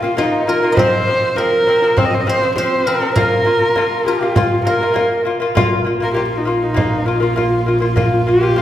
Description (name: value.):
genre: mongolian traditional, Mongolian folk.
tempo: 100 BPM.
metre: 4/4.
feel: straight.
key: Bb zhi mode.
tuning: A4 = 440 Hz.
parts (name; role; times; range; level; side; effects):
warm horsehead fiddle; melody; 0.0-8.6 s; Eb4 to Eb5; -17 LUFS; right 1 dB; tape echo.
guzheng; second line; 0.0-6.9 s; Eb4 to Eb5; -23 LUFS; right 1 dB; none.
lute; arpeggios; 0.0-8.6 s; F3 to F4; -18 LUFS; left 3 dB; none.
frame drum; percussion; 0.0-8.6 s; none; -20 LUFS; right 1 dB; none.
muted double bass; drone; 5.6-8.6 s; Bb1; -22 LUFS; right 1 dB; none.
room: wet recital hall reverb, RT60 1.6 s.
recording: heard from further back in the room.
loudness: -13 LUFS.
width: side -12 dB against mid.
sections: 0.0-5.6 A section; 5.6-8.6 B section.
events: none.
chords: 0.0 Bb5; 0.8 F5; 3.2 Bb5.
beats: 0.17 | 0.77 1.37 1.97 2.57 | 3.17 3.77 4.37 4.96 | 5.56 6.16 6.76 7.36 | 7.96 8.56.